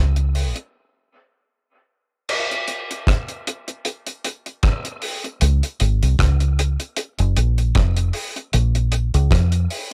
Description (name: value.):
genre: dub reggae.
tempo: 77 BPM.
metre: 4/4.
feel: swing 56% on 16ths.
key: unclear.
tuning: A4 = 440 Hz.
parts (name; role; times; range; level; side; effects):
deep dub fingered electric bass; bass; 0.0-0.5, 5.4-9.7 s; F1 to F2; -19 LUFS; equal; tube saturation.
deep reggae drum kit; drums; 0.2-9.9 s; crash cymbal, hi-hat, kick drum, rim click; -24 LUFS; equal; none.
room: little or no reverb.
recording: home recording on cassette.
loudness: -21 LUFS.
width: mono.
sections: 0.0-2.3 A section; 2.3-9.9 B section.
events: break 0.7-2.3.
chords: none.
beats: 0.73 1.51 | 2.29 3.07 3.85 4.63 | 5.41 6.19 6.97 7.75 | 8.53 9.31.